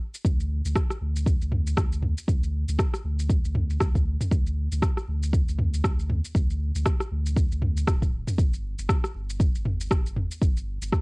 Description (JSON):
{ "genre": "afro house", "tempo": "118 BPM", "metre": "4/4", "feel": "swing 58% on 16ths", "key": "unclear", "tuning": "A4 = 440 Hz", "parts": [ { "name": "deep house drum kit", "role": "drums", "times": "0.1-11.0 s", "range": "rim click, shaker, toms", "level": "-29 LUFS", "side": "equal", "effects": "cassette tape" }, { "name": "warm sub bass", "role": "bass", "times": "0.2-10.9 s", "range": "D1 to D2", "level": "-27 LUFS", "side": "equal", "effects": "sidechain pumping" }, { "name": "electronic kick drum", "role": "drums", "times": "0.2-11.0 s", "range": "none", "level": "-23 LUFS", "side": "equal", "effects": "cassette tape" } ], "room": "little or no reverb", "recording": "home recording on cassette, lossy compression artefacts", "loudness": "-23 LUFS", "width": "side -34 dB against mid", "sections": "0.0-11.0 A section", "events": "none", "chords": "none" }